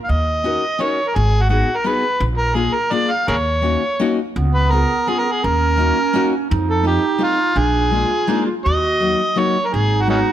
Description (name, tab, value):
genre	musette waltz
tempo	168 BPM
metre	3/4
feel	rubato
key	Eb minor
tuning	A4 = 444 Hz
part	overdriven harmonica	melody	0.0-10.3 s	Db4 to F5	-19 LUFS	equal	none
part	upright bass	bass	0.1-10.2 s	Ab1 to F2	-18 LUFS	equal	none
part	fingerpicked steel-string acoustic guitar	accompaniment	0.4-10.3 s	Gb3 to Bb4	-23 LUFS	left 4 dB	none
part	dark clarinet	second line	4.4-10.3 s	Cb4 to Gb4	-22 LUFS	right 6 dB	none
room	light reverb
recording	close, detailed microphones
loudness	-15 LUFS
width	side -11 dB against mid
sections	0.0-10.3 A section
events	none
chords	0.1 Ebm7; 1.2 Abm7; 2.2 Bb7; 3.3 Ebm7; 4.4 Db7; 5.4 Ebm7; 6.5 F7; 7.6 Bb7; 8.7 Ebm; 9.7 Abm7